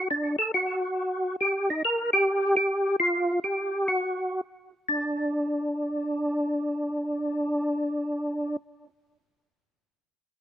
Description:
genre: jazz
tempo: 138 BPM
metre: 4/4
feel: swing 66% on 8ths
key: unclear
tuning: A4 = 440 Hz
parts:
  - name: percussive tonewheel organ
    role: solo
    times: 0.0-8.6 s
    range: D4 to Bb4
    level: -24 LUFS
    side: equal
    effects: slow rotary speaker, chorus vibrato
room: little or no reverb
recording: recorded outdoors, with no room sound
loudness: -24 LUFS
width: side -11 dB against mid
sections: 0.0-4.9 A section; 4.9-8.3 B section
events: none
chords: none

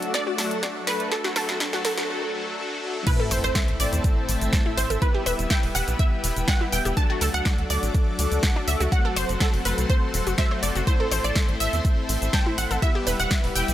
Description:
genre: progressive house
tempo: 123 BPM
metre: 4/4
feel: straight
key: unclear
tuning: A4 = 438 Hz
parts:
  - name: lush unison pad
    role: sustained chords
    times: 0.0-13.7 s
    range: A3 to E6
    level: -34 LUFS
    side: left 1 dB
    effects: chorus, phaser, sidechain pumping
  - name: soft supersaw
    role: stabs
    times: 0.0-13.7 s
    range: A2 to E5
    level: -30 LUFS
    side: left 2 dB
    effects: vintage 12-bit sampler grit, sidechain pumping, low-pass filter, digital delay
  - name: deep house drum kit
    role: drums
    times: 0.0-13.7 s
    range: cabasa, crash cymbal, hi-hat, snare drum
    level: -29 LUFS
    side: equal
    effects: high-pass filter on snare, sidechain pumping on hats, high-pass filter on hats, sidechain pumping on cymbals, high-pass filter on cymbals, sidechain pumping on perc, high-pass filter on perc, high-pass filter on room
  - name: backwards swelling texture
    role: texture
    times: 0.0-2.1, 13.0-13.7 s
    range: E5 to E6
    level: -43 LUFS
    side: right 1 dB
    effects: none
  - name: wide unison pluck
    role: melody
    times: 0.1-13.7 s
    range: A4 to A5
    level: -29 LUFS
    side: right 1 dB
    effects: analog chorus, sidechain pumping, dub echo
  - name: analog pluck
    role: arpeggios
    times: 0.1-13.4 s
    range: D4 to A5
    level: -31 LUFS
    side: equal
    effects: chorus, sidechain pumping, digital delay
  - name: electronic kick drum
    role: drums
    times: 0.1-13.4 s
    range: none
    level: -22 LUFS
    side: equal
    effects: high-pass filter on kick, high-pass filter on room
  - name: sub drop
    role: sound effects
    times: 3.1-5.0 s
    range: none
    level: -34 LUFS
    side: equal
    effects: none
  - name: tight sequencer bass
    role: bass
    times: 3.3-13.7 s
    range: E1 to E2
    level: -26 LUFS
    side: equal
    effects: sidechain pumping
room: light reverb, digital ambience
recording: high-pass filter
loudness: -21 LUFS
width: side -12 dB against mid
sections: 0.0-3.1 A section; 3.1-13.7 B section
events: build-up 0.0-3.1; drum fill 0.0-2.1; filter sweep on supersaw synth 0.0-3.1; break 2.1-3.1; drop 3.1-13.7; impact 3.1-5.0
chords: 0.0 D; 1.1 F#dim; 3.1 Am; 5.0 Em; 7.0 D; 8.9 F#dim; 10.9 Am; 12.8 Em

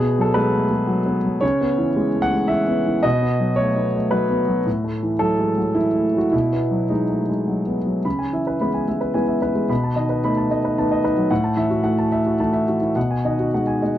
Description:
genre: neoclassical minimalist piano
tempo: 103-113 BPM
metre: 3/4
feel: rubato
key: C# minor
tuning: A4 = 440 Hz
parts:
  - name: dark grand piano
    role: solo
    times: 0.0-14.0 s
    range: A2 to B5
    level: -18 LUFS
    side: equal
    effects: none
room: light reverb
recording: dry, close 1970s-style studio recording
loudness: -18 LUFS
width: side -12 dB against mid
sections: 0.0-8.0 A section; 8.0-14.0 B section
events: none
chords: 0.0 G#m7/B; 1.4 C#m7; 3.0 B7; 4.7 F#m7/A; 6.3 G#m7/B; 8.0 C#m7; 9.7 B7; 11.3 F#m7/A; 13.0 G#m7/B

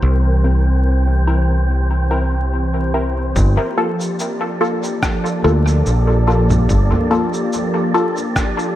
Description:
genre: ambient dub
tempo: 72 BPM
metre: 4/4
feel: swing 55% on 16ths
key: G dorian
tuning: A4 = 440 Hz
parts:
  - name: warm analog pad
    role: sustained chords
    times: 0.0-8.8 s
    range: E3 to Bb4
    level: -22 LUFS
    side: right 1 dB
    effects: chorus
  - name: fingered electric bass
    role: bass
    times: 0.0-6.9 s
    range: G1 to D2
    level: -15 LUFS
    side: equal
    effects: none
  - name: wind-like tuned noise texture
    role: texture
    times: 0.0-8.8 s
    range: C4 to D5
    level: -26 LUFS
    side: equal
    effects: built-in reverb
  - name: filtered dub chord stab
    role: stabs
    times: 0.4-8.2 s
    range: Bb3 to Bb4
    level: -21 LUFS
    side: left 1 dB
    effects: phaser, dub echo
  - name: electronic cabasa, rim click and congas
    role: drums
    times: 3.4-8.7 s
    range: none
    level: -23 LUFS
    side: equal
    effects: small room ambience, dub echo
  - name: electronic kick drum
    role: drums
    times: 3.4-8.5 s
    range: none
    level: -20 LUFS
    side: equal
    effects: small room ambience
room: light reverb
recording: echo-heavy mix, vinyl crackle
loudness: -14 LUFS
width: side -13 dB against mid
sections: 0.0-3.4 A section; 3.4-8.8 B section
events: filter sweep on analog synth pad 0.0-3.4; filter sweep on synth stab 0.0-3.4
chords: 0.0 C7; 3.4 Gm9

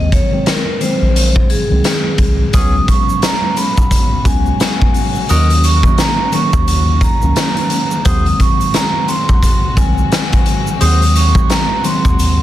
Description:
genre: hip hop, boom-bap hip-hop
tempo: 87 BPM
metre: 4/4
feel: swing 58% on 16ths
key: unclear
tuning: A4 = 440 Hz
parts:
  - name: vibraphone with hard mallets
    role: melody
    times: 0.0-12.4 s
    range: Ab4 to Eb6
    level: -19 LUFS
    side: right 1 dB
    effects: high-pass filter, low-pass filter
  - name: mellow tine electric piano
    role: accompaniment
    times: 0.0-12.4 s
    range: Eb3 to Db4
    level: -19 LUFS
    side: equal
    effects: medium stereo tremolo, high-pass filter, low-pass filter
  - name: soft dub sub bass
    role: bass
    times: 0.0-12.4 s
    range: Bb1 to Eb2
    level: -14 LUFS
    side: equal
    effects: none
  - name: raw garage drum kit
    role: drums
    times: 0.1-12.4 s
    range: hi-hat, kick drum, snare drum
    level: -14 LUFS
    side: equal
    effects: none
  - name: dark studio string section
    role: sustained chords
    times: 2.5-12.4 s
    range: Db3 to Gb4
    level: -28 LUFS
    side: left 1 dB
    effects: high-pass filter, low-pass filter
  - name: warm horn section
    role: stabs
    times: 2.5-11.0 s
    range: Cb4 to C5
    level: -27 LUFS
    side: right 3 dB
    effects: high-pass filter, low-pass filter, digital delay
  - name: tube shaker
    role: percussion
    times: 2.5-12.4 s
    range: none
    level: -31 LUFS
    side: right 5 dB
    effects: none
room: light reverb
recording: dense, heavily limited modern master, vinyl crackle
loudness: -11 LUFS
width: side -13 dB against mid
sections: 0.0-2.5 A section; 2.5-12.4 B section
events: none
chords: 0.0 Ab7; 2.5 Db7sus4; 5.3 Ebm7; 8.1 Ab7

